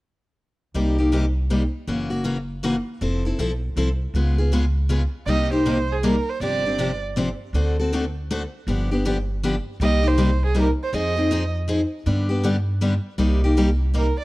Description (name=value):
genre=acoustic string swing (jazz manouche)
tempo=159 BPM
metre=3/4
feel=swing 63% on 8ths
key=C minor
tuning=A4 = 440 Hz
part: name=picked steel-string acoustic guitar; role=accompaniment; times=0.7-14.1 s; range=C3 to A4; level=-23 LUFS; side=left 2 dB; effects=none
part: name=upright bass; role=bass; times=0.7-14.1 s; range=F1 to G2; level=-22 LUFS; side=equal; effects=none
part: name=warm violin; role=melody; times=5.3-7.0, 9.8-11.5, 14.0-14.2 s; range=Ab4 to Eb5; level=-25 LUFS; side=right 5 dB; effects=none
room=studio reverb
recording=dry, close 1970s-style studio recording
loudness=-20 LUFS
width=side -19 dB against mid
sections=0.7-5.3 A section; 5.3-14.2 B section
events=none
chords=0.7 Cm7; 1.9 F#7; 3.0 Fmaj7; 4.1 Db7; 5.3 Cm7; 6.4 G7sus4; 7.5 D7; 8.7 G7; 9.8 Cm7; 10.9 Fm7; 12.1 G; 13.2 Cm7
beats=| 0.75 1.12 1.50 | 1.88 2.25 2.63 | 3.01 3.39 3.76 | 4.14 4.52 4.89 | 5.27 5.65 6.03 | 6.40 6.78 7.16 | 7.54 7.91 8.29 | 8.67 9.04 9.42 | 9.80 10.18 10.55 | 10.93 11.31 11.68 | 12.06 12.44 12.81 | 13.19 13.57 13.94